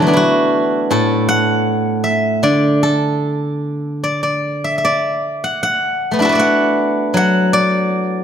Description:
chinese traditional; 78 BPM; 2/4; rubato; D gong mode; A4 = 439 Hz
steel-string zither; solo; 0.0-8.2 s; A2 to F#5; -14 LUFS; equal
moderate recital hall reverb, RT60 1.5 s; -14 LUFS; side -8 dB against mid
0.0-8.2 A section

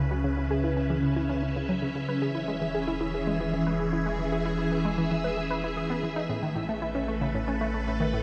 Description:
ambient, sequencer-driven space music; 114 BPM; 4/4; straight; A4 = 440 Hz
phased string machine; sustained chords; 0.0-8.2 s; C#3 to E5; -31 LUFS; equal; ensemble chorus, phaser, shimmer reverb
analog pluck; riff; 0.0-8.2 s; A2 to B4; -33 LUFS; equal; chorus, cassette tape, analog delay, shimmer reverb
warm sub bass; bass; 0.0-8.2 s; E1 to C#2; -38 LUFS; equal
wet cathedral reverb, RT60 6.6 s; in a vast, echoing space; -29 LUFS; mono
0.0-8.2 A section
filter sweep on synth arpeggio sound 0.0-8.2
0.0 C#m7; 2.1 E6; 6.3 Asus2

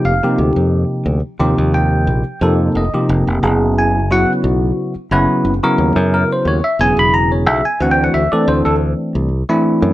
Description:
jazz; 89 BPM; 4/4; swing 53% on 16ths; A4 = 440 Hz
bell-like tine electric piano; accompaniment; 0.0-9.9 s; C3 to Cb6; -14 LUFS; equal; phaser
fingered electric bass; bass; 0.0-9.9 s; Fb1 to Gb2; -16 LUFS; equal
light reverb; -13 LUFS; side -15 dB against mid
0.0-9.9 A section
0.0 F9sus4; 3.4 Gb9sus4; 7.8 D7

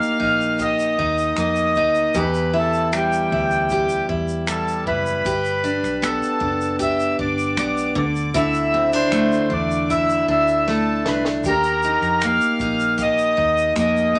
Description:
acoustic pop; 78 BPM; 4/4; straight; A4 = 441 Hz
accordion; melody; 0.0-14.2 s; G4 to F5; -23 LUFS; equal
picked steel-string acoustic guitar; accompaniment; 0.0-14.2 s; E2 to G4; -24 LUFS; equal
compact cocktail drum kit; drums; 0.0-14.2 s; finger snaps, kick drum, shaker, snare drum; -34 LUFS; equal
vintage muted fingered electric bass; bass; 0.2-14.2 s; F#1 to F2; -32 LUFS; equal
light reverb; nothing above 10.8 kHz; -20 LUFS; mono
0.0-14.2 A section
drum fill 10.7-11.4
0.0 Ebadd9; 2.2 Em; 5.2 G; 8.0 Dsus2; 11.4 Ebadd9

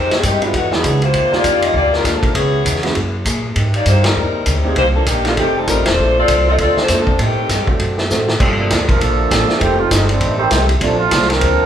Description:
jazz, big band swing; 198 BPM; 4/4; swing 60% on 8ths; Bb major, G minor from 8.4 s; A4 = 441 Hz
mellow saxophone section; melody; 0.0-7.7 s; D3 to Eb5; -16 LUFS; left 2 dB
picked acoustic archtop guitar; accompaniment; 0.0-11.6 s; F2 to C5; -26 LUFS; left 2 dB
upright bass; bass; 0.0-11.7 s; Eb1 to Bb2; -18 LUFS; equal
vintage drum kit; drums; 0.1-11.5 s; crash cymbal, hi-hat, kick drum, ride cymbal, snare drum; -18 LUFS; equal
warm baby grand piano; accompaniment; 0.4-11.3 s; Gb3 to A4; -23 LUFS; right 3 dB
mellow trombone section; second line; 8.4-11.7 s; D3 to Bb4; -16 LUFS; right 3 dB
wet large studio reverb, RT60 1.0 s; band playing live in one room; -13 LUFS; side -9 dB against mid
0.0-8.4 A section; 8.4-11.7 B section
band accent 4.0, 5.8; drum fill 8.1-8.4; trombone section solo 8.4-11.7
0.0 Fm9; 0.5 E9; 1.1 Ebmaj9; 2.3 Dbm7; 3.0 Gb9; 3.6 Abmaj9; 4.8 Cm9; 5.4 F13; 6.0 Bbmaj9; 7.2 Am7b5; 7.8 D7; 8.4 Gm9; 9.6 F9; 10.8 Bbmaj9

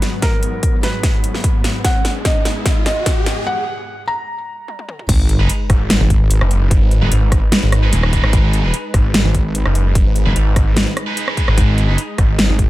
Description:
heavy wobble dubstep; 148 BPM; 4/4; half-time; G# minor; A4 = 440 Hz
felt-muted upright piano; melody; 0.0-5.0 s; A#4 to A#5; -24 LUFS; equal; ping-pong delay
supersaw pad; sustained chords; 0.0-12.7 s; G#2 to D#5; -27 LUFS; equal; sidechain pumping, low-pass filter
dubstep drum kit; drums; 0.0-12.7 s; crash cymbal, hi-hat, rim click, snare drum, toms; -20 LUFS; equal; high-pass filter on hats, high-pass filter on snare, high-pass filter on toms, high-pass filter on cymbals
riser and sub drop; sound effects; 0.5-6.7 s; -24 LUFS; equal
electronic kick drum; drums; 0.2-12.7 s; -16 LUFS; equal
wobble bass; bass; 5.1-12.7 s; D#1 to G#1; -15 LUFS; equal; chorus, overdrive
tight distorted guitar; stabs; 5.4-12.0 s; D#4 to B4; -25 LUFS; right 3 dB; distortion, ping-pong delay
snarling distorted saw bass; bass; 5.7-12.5 s; F#1 to G#1; -16 LUFS; equal; distortion, overdrive
digital ambience; -13 LUFS; side -16 dB against mid
0.0-5.1 A section; 5.1-12.7 B section
build-up 0.0-5.1; drum fill 0.0-3.5, 4.7-5.1; riser 0.5-3.5; break 3.5-5.1; drop 5.1-12.7; impact 5.1-6.7
0.0 G#m7; 5.1 G#m

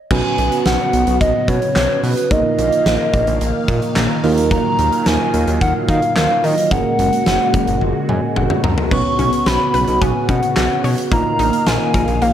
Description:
synth-pop; 109 BPM; 4/4; straight; A4 = 440 Hz
hollow clarinet-like synth lead; melody; 0.1-12.3 s; B4 to C#6; -19 LUFS; left 1 dB; chorus, slapback echo
muted felt-like synth keys; accompaniment; 0.1-12.3 s; F3 to Bb5; -21 LUFS; right 5 dB; chorus
phased analog pad; sustained chords; 0.1-12.3 s; Bb2 to F5; -23 LUFS; equal; phaser, chorus
fat analog bass; bass; 0.1-12.3 s; Gb1 to Eb3; -20 LUFS; equal
huge arena drum kit; drums; 0.1-12.3 s; crash cymbal, handclaps, hi-hat, kick drum, snare drum, splash cymbal, toms; -20 LUFS; left 1 dB
wide unison pluck; arpeggios; 8.9-12.3 s; Bb3 to C#5; -26 LUFS; left 3 dB; slapback echo
light reverb, studio reverb; -14 LUFS; side -10 dB against mid
0.1-12.3 A section
synth keys fill 3.4-4.5, 7.8-8.9; drum fill 7.8-8.9
0.1 Bsus2; 2.3 Bbsus4; 4.2 Ebmadd9; 6.7 Gbadd9; 8.9 Bsus2; 11.1 Bbsus4

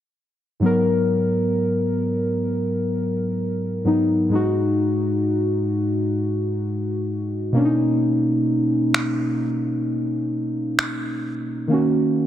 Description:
contemporary R&B; 65 BPM; 4/4; swing 54% on 16ths; G# minor; A4 = 440 Hz
muted felt-like synth keys; accompaniment; 0.6-12.3 s; G#2 to A#4; -19 LUFS; equal; chorus
electronic finger snaps; drums; 8.9-11.0 s; -25 LUFS; right 1 dB; soft clipping on snare
light reverb; dense, heavily limited modern master; -19 LUFS; side -11 dB against mid
0.6-12.3 A section
kick muted 11.7-12.3
0.6 G#m9; 4.3 D#madd11/G#; 7.5 Bmaj9; 11.7 D#m7

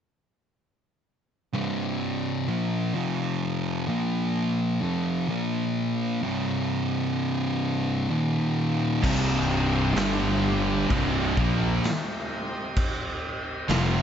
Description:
stoner and doom metal; 64 BPM; 4/4; straight; C minor; A4 = 440 Hz
thick fuzz guitar; riff; 1.5-14.0 s; C2 to Bb3; -28 LUFS; left 8 dB; distortion
thick fuzz guitar; riff; 1.5-14.0 s; C2 to Bb3; -27 LUFS; right 6 dB; distortion
overdriven tonewheel organ; sustained chords; 9.0-14.0 s; C4 to G5; -35 LUFS; equal
heavy high-gain guitar; riff; 9.0-14.0 s; C2 to Bb3; -31 LUFS; right 1 dB; distortion
fuzz fingered electric bass; bass; 9.0-14.0 s; C1 to Bb1; -29 LUFS; equal; overdrive, tube saturation
raw garage drum kit; drums; 9.0-13.9 s; crash cymbal, kick drum, snare drum; -28 LUFS; equal
light reverb; nothing above 7.8 kHz; -24 LUFS; side -8 dB against mid
1.5-9.0 A section; 9.0-14.0 B section
1.5 C5; 2.9 F5; 3.9 Bb5; 4.8 F5; 5.3 Bb5; 6.2 C5; 8.1 Eb5; 9.0 Cm; 10.0 G5; 10.9 Cm

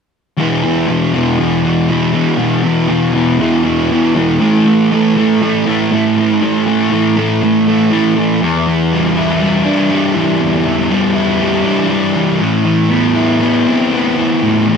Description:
rock; 120 BPM; 4/4; straight; E minor; A4 = 439 Hz
fuzz guitar; solo; 0.4-14.8 s; E2 to E4; -11 LUFS; equal; distortion, lush chorus
light reverb; dark, warm production; -11 LUFS; side -6 dB against mid
0.4-8.4 A section; 8.4-14.8 B section
0.4 E5; 4.4 A5; 8.4 Em7; 12.4 Amadd9

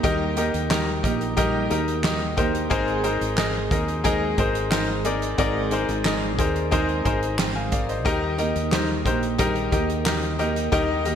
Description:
piano-driven pop; 90 BPM; 4/4; straight; Eb major; A4 = 440 Hz
bright upright piano; accompaniment; 0.0-11.2 s; Ab2 to Bb5; -24 LUFS; left 3 dB
picked steel-string acoustic guitar; riff; 0.0-11.2 s; Eb3 to Bb4; -29 LUFS; right 8 dB; analog chorus
fingered electric bass; bass; 0.0-11.2 s; Ab1 to Eb2; -29 LUFS; equal
loose indie drum kit; drums; 0.0-11.2 s; handclaps, hi-hat, kick drum, snare drum; -27 LUFS; right 1 dB; gated reverb
moderate lush hall reverb, RT60 1.8 s, small room ambience; bright 1980s-style digital production; -20 LUFS; side -8 dB against mid
0.0-11.2 A section
0.0 Eb; 2.7 Abadd9; 8.1 Eb

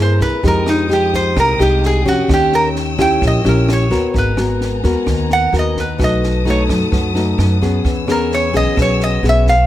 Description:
bossa nova; 130 BPM; 4/4; straight; G# minor from 4.1 s; A4 = 440 Hz
lap resonator guitar; melody; 0.0-9.7 s; Eb4 to G5; -17 LUFS; right 2 dB
nylon-string guitar; accompaniment; 0.0-9.7 s; G2 to Bb4; -18 LUFS; left 2 dB
dark studio string section; sustained chords; 0.0-9.7 s; Bb4 to Fb6; -27 LUFS; left 3 dB
upright bass; bass; 0.0-9.7 s; G#1 to G2; -18 LUFS; right 1 dB
compact cocktail drum kit; drums; 0.2-9.5 s; kick drum, rim click, snare drum; -22 LUFS; right 1 dB
little or no reverb; -13 LUFS; side -13 dB against mid
0.0-4.1 A section; 4.1-9.7 A section
resonator guitar played with a steel bar solo 0.0-9.7
0.4 Fm9; 2.3 Eb7b9; 4.1 G#m9; 6.0 B7; 7.8 E6

